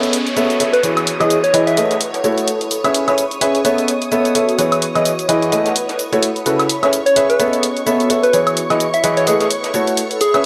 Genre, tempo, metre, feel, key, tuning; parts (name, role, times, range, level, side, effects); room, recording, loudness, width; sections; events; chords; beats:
piano house; 128 BPM; 4/4; swing 57% on 16ths; A4 = 440 Hz
string machine, violins; sustained chords; 0.0-10.5 s; C#5 to D#6; -27 LUFS; equal; ensemble chorus
clear grand piano; riff; 0.0-10.5 s; C#3 to E5; -19 LUFS; equal; low-pass filter
electronic hi-hat, cabasa and woodblock; drums; 0.0-10.4 s; -23 LUFS; equal
soft brush drum kit; drums; 0.0-10.4 s; hi-hat, snare drum, tambourine; -37 LUFS; equal
downlifter; sound effects; 0.0-2.9 s; -31 LUFS; equal
airy breathy pad; texture; 0.0-10.5 s; B3 to B5; -26 LUFS; equal; chorus, phaser
soft struck synth lead; melody; 0.7-2.1, 7.1-10.5 s; G#4 to E5; -20 LUFS; equal; chorus, tremolo, analog delay
light reverb, digital ambience; -16 LUFS; mono
0.0-10.5 A section
0.0 B9sus4; 0.8 Emaj7; 2.0 A6; 2.9 C#m7; 3.6 B9sus4; 4.6 Emaj7; 5.8 A6; 6.7 C#m7; 7.4 B9sus4; 8.3 Emaj7; 9.5 A6
0.13 0.60 | 1.07 1.54 2.00 2.47 | 2.94 3.41 3.88 4.35 | 4.82 5.29 5.75 6.22 | 6.69 7.16 7.63 8.10 | 8.57 9.04 9.51 9.97 | 10.44